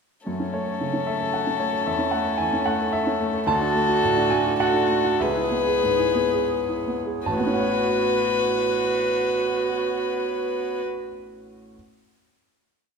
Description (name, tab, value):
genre	neoclassical piano and strings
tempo	80-114 BPM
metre	3/4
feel	rubato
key	A major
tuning	A4 = 440 Hz
part	hand-pumped harmonium	sustained chords	0.2-10.8 s	A3 to D5	-32 LUFS	right 4 dB	none
part	warm violin	melody	0.3-10.8 s	A4 to B4	-24 LUFS	left 6 dB	none
part	clear baby grand piano	accompaniment	0.3-11.8 s	A1 to A5	-26 LUFS	right 1 dB	none
part	rich viola	accompaniment	0.3-10.8 s	C#4 to G#4	-28 LUFS	right 8 dB	none
room	moderate scoring stage reverb, RT60 1.7 s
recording	minimal, uncompressed stereo recording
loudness	-20 LUFS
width	side -5 dB against mid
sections	0.3-7.3 theme; 7.3-11.7 final chord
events	slowing down 2.7-7.3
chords	0.3 F#m; 1.9 A/E; 3.5 D; 5.2 C#m7; 7.3 A69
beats	| 0.26 0.80 1.34 | 1.87 2.41 2.94 | 3.48 4.03 4.60 | 5.21 5.85 6.54 | 7.27 8.01 8.75 | 9.49 10.24 10.98